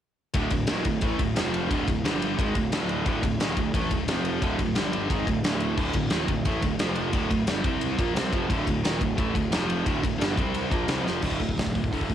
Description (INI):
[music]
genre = heavy metal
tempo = 177 BPM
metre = 4/4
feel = straight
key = D phrygian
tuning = A4 = 440 Hz
[part]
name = distorted electric guitar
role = riff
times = 0.3-12.1 s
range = D2 to C4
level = -29 LUFS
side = right 8 dB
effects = distortion, cassette tape
[part]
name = scooped high-gain guitar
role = riff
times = 0.3-12.1 s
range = D2 to C4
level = -30 LUFS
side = left 9 dB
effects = distortion, cassette tape
[part]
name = fuzz picked electric bass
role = bass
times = 0.3-12.1 s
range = D1 to C2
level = -32 LUFS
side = left 1 dB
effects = overdrive
[part]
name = big rock drum kit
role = drums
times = 0.3-12.1 s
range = crash cymbal, hi-hat, kick drum, ride cymbal, snare drum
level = -27 LUFS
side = left 1 dB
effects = cassette tape
[sound]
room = little or no reverb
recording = home recording on cassette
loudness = -23 LUFS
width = side -10 dB against mid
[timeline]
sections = 0.4-11.2 A section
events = drum fill 11.1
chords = 0.4 D5; 1.4 F5; 1.7 D5; 2.0 G5; 2.4 D5; 4.1 F5; 4.4 D5; 4.8 G5; 5.1 D5; 6.8 F5; 7.1 D5; 7.6 C5; 8.0 Dm; 9.5 F5; 9.9 D5; 10.4 C5; 10.7 Fsus24; 11.2 D5